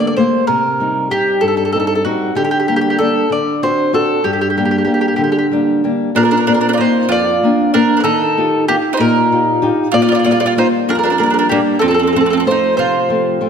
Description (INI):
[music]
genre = italian folk, Italian serenade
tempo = 64 BPM (dotted quarters)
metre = 6/8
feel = straight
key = G harmonic minor, Bb major from 6.2 s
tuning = A4 = 442 Hz
[part]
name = mandolin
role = melody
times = 0.0-13.4 s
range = F#4 to D5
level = -16 LUFS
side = right 1 dB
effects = none
[part]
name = flamenco guitar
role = accompaniment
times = 0.0-13.5 s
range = F2 to D5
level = -15 LUFS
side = left 2 dB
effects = none
[part]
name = mandolin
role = second line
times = 6.2-13.5 s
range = Bb3 to F4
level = -18 LUFS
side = right 6 dB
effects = none
[sound]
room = wet scoring stage reverb, RT60 1.4 s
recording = none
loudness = -12 LUFS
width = side -7 dB against mid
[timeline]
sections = 0.0-6.2 A section; 6.2-13.5 B section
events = none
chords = 0.5 Cm; 2.4 Gm/D; 3.3 D7; 4.3 Gm; 6.2 Bbadd9; 8.1 Ebadd9; 9.9 Bb6; 11.8 F